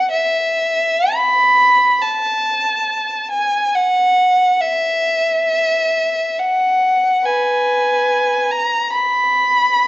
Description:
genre	classical, free, expressive piece for unaccompanied violin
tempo	free time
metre	none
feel	none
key	E major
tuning	A4 = 440 Hz
part	rich violin	solo	0.0-9.9 s	B4 to B5	-13 LUFS	equal	none
room	moderate recital hall reverb, RT60 1.4 s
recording	worn, warbling old tape, cassette tape, warbly pitch drift, nothing above 7.6 kHz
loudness	-13 LUFS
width	side -17 dB against mid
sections	0.0-9.9 A section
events	none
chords	none

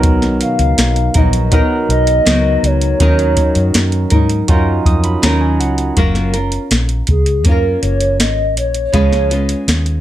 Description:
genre	indie pop, bedroom pop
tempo	81 BPM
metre	4/4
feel	straight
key	F# major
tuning	A4 = 439 Hz
part	barky tine electric piano	accompaniment	0.0-6.0 s	F#3 to D#6	-19 LUFS	right 4 dB	cassette tape
part	nylon-string guitar	accompaniment	0.0-10.0 s	B2 to B4	-19 LUFS	left 1 dB	wide subtle chorus, warbly pitch drift
part	vintage muted fingered electric bass	bass	0.0-10.0 s	F#1 to G#2	-16 LUFS	equal	none
part	soft vintage rhythm box	drums	0.0-10.0 s	hi-hat, kick drum, snare drum	-15 LUFS	equal	none
part	hollow clarinet-like synth lead	melody	0.4-10.0 s	G#4 to E#5	-17 LUFS	equal	wide subtle chorus
room	light reverb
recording	none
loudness	-11 LUFS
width	side -12 dB against mid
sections	0.0-6.0 A section; 6.0-10.0 B section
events	tine electric piano fill 4.5-6.0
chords	0.0 Bmaj7; 3.0 D#m7; 6.0 F#maj7; 8.9 C#7

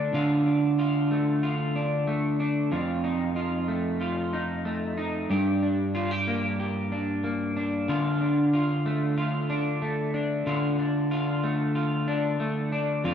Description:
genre	dream pop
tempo	93 BPM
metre	4/4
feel	straight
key	unclear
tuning	A4 = 438 Hz
part	electric guitar at the edge of break-up	solo	0.0-13.1 s	F2 to G4	-24 LUFS	equal	lush chorus, slapback echo
room	moderate plate reverb, RT60 2.6 s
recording	dark, warm production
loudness	-24 LUFS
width	side -8 dB against mid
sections	0.0-13.1 A section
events	none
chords	0.0 Dm; 2.7 F7; 5.3 Gm; 7.9 Dm

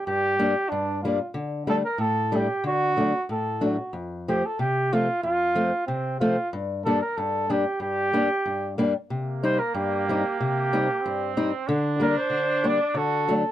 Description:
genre	alpine folk, alpine dance band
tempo	93 BPM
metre	2/4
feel	straight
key	G minor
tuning	A4 = 440 Hz
part	mellow flugelhorn	melody	0.0-13.5 s	C4 to D5	-25 LUFS	right 1 dB	none
part	fingerpicked old ladder-braced acoustic guitar	accompaniment	0.1-13.4 s	F2 to Eb4	-25 LUFS	left 2 dB	none
part	warm trumpet	second line	9.1-13.3 s	Bb3 to F#4	-30 LUFS	right 6 dB	none
room	light reverb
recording	dry, close 1970s-style studio recording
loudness	-22 LUFS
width	side -12 dB against mid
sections	0.0-13.5 A section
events	none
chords	0.0 Gm; 1.3 Dsus4; 2.6 D; 3.9 F; 6.5 Gm; 9.1 Cm7; 11.7 Gm/D; 13.0 D

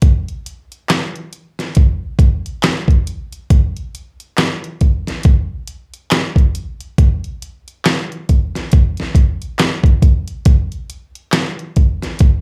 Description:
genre	R&B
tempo	69 BPM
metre	4/4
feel	swing 60% on 16ths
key	none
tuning	none
part	pop drum kit	drums	0.0-12.4 s	handclaps, hi-hat, kick drum, snare drum	-15 LUFS	equal	overdrive
room	light reverb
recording	live gig heard through the venue's PA, club reverb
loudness	-16 LUFS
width	mono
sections	0.0-12.4 A section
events	none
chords	none

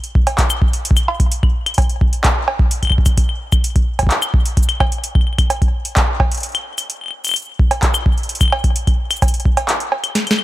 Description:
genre	IDM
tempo	129 BPM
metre	4/4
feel	straight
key	none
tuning	none
part	booming analog drum machine	drums	0.0-10.4 s	claves, cowbell, handclaps, hi-hat, shaker, snare drum	-19 LUFS	equal	overdrive, ping-pong delay
part	electronic kick drum	drums	0.2-9.5 s	none	-15 LUFS	equal	overdrive
room	little or no reverb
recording	none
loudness	-14 LUFS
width	side -16 dB against mid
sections	0.0-10.4 A section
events	kick drops out 9.7-10.4; drum fill 10.2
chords	none

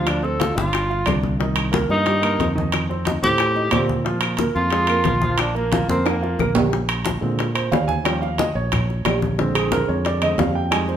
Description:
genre	Afro-Cuban jazz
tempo	180 BPM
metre	4/4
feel	straight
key	Bb mixolydian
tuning	A4 = 440 Hz
part	breathy tenor saxophone	melody	0.0-6.6 s	Bb3 to A4	-22 LUFS	equal	none
part	warm baby grand piano	accompaniment	0.0-11.0 s	D3 to Ab5	-24 LUFS	right 3 dB	none
part	fingered electric bass	bass	0.0-11.0 s	G1 to Bb2	-24 LUFS	equal	none
part	bongos	percussion	0.1-11.0 s	none	-28 LUFS	left 8 dB	none
part	claves	percussion	0.1-10.9 s	none	-32 LUFS	left 6 dB	none
part	congas	percussion	0.1-11.0 s	none	-27 LUFS	left 2 dB	none
part	timbales	percussion	0.1-10.9 s	none	-26 LUFS	right 5 dB	none
room	wet large studio reverb, RT60 1.1 s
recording	minimal, uncompressed stereo recording, faint mains hum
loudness	-18 LUFS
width	side -9 dB against mid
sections	0.0-6.7 A section; 6.7-11.0 B section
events	drum fill 6.1-6.7; grand piano solo 6.7-11.0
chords	0.1 G5; 1.4 Cm7; 2.7 F9; 4.1 Bb5; 6.7 Bb9; 8.1 Eb9; 9.4 Bb9

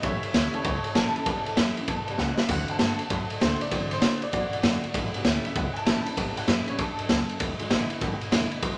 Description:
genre	rockabilly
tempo	196 BPM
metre	4/4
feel	swing 64% on 8ths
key	A mixolydian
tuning	A4 = 439 Hz
part	honky-tonk upright piano	accompaniment	0.0-8.8 s	C#3 to A5	-34 LUFS	equal	none
part	picked steel-string acoustic guitar	accompaniment	0.0-8.8 s	E2 to F#4	-37 LUFS	equal	none
part	upright bass	bass	0.0-8.8 s	E1 to C3	-37 LUFS	equal	none
part	raw garage drum kit	drums	0.0-8.7 s	kick drum, ride cymbal, snare drum, splash cymbal	-28 LUFS	equal	none
room	moderate large studio reverb, RT60 1.1 s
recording	none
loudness	-26 LUFS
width	mono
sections	0.0-8.8 A section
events	honky-tonk piano solo 0.0-8.8; drum fill 2.2-2.5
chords	0.0 A7; 2.5 D7; 4.9 A7; 7.4 E7

